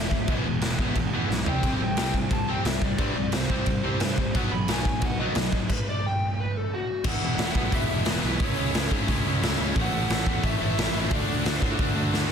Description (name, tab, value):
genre	punk rock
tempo	177 BPM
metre	4/4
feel	straight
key	unclear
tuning	A4 = 439 Hz
part	lead guitar through a small cranked amp	melody	0.0-11.6 s	F#4 to B5	-32 LUFS	left 1 dB	overdrive
part	crunchy overdriven guitar	riff	0.0-12.3 s	A2 to F#4	-32 LUFS	right 14 dB	none
part	distorted electric guitar	riff	0.0-12.3 s	E2 to D4	-32 LUFS	left 16 dB	overdrive
part	overdriven semi-hollow guitar	riff	0.0-12.3 s	E2 to D4	-34 LUFS	equal	none
part	fuzz picked electric bass	bass	0.0-12.3 s	E1 to A2	-31 LUFS	equal	overdrive
part	raw garage drum kit	drums	0.1-12.2 s	crash cymbal, hi-hat, kick drum, snare drum, toms	-26 LUFS	equal	none
room	little or no reverb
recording	dense, heavily limited modern master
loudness	-23 LUFS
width	side -7 dB against mid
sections	0.0-7.1 A section; 7.1-12.3 B section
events	lead electric guitar solo 0.0-7.1; drum fill 1.3-1.6, 12.1; stop 5.7-7.1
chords	0.0 E; 1.5 C5; 4.4 B5; 7.1 E; 8.4 C#m; 9.8 A; 11.1 D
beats	| 0.29 0.63 0.97 1.31 | 1.65 1.99 2.32 2.66 | 3.00 3.34 3.68 4.02 | 4.36 4.70 5.03 5.37 | 5.71 6.05 6.39 6.73 | 7.06 7.40 7.74 8.08 | 8.42 8.75 9.09 9.43 | 9.77 10.11 10.45 10.78 | 11.12 11.46 11.80 12.14